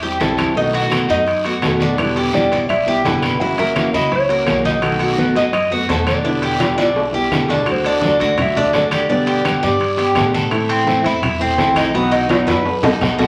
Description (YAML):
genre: latin, Cuban son and guajira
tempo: 169 BPM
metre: 4/4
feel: straight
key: E minor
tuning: A4 = 440 Hz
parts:
  - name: fingerpicked plugged-in steel-string acoustic guitar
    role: accompaniment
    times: 0.0-13.3 s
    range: B2 to G4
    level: -22 LUFS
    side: equal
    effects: none
  - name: Cuban tres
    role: arpeggios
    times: 0.0-13.3 s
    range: B3 to D#5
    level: -22 LUFS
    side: equal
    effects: none
  - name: upright bass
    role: bass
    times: 0.0-13.3 s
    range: F#1 to A2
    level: -30 LUFS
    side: equal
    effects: none
  - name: congas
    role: percussion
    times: 0.0-13.3 s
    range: none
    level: -29 LUFS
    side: equal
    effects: none
  - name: guiro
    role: percussion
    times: 0.2-13.3 s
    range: none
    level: -29 LUFS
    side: equal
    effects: none
  - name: timbales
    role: percussion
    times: 0.2-13.3 s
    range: none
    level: -26 LUFS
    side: equal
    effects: none
  - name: claves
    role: percussion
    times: 0.4-13.2 s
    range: none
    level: -33 LUFS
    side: equal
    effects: none
  - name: nylon-string guitar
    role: melody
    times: 2.0-10.3, 13.0-13.3 s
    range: G4 to F#5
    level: -23 LUFS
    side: equal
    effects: none
room: wet large studio reverb, RT60 0.9 s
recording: vinyl crackle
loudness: -17 LUFS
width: mono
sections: 0.0-7.7 A section; 7.7-13.3 B section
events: drum fill 6.6-7.7, 12.3-13.3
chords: 0.0 Am7; 0.6 B7; 2.0 Em7; 3.4 F#7; 4.8 B7; 6.2 Em7; 7.7 D; 9.1 G; 10.5 Am; 11.9 B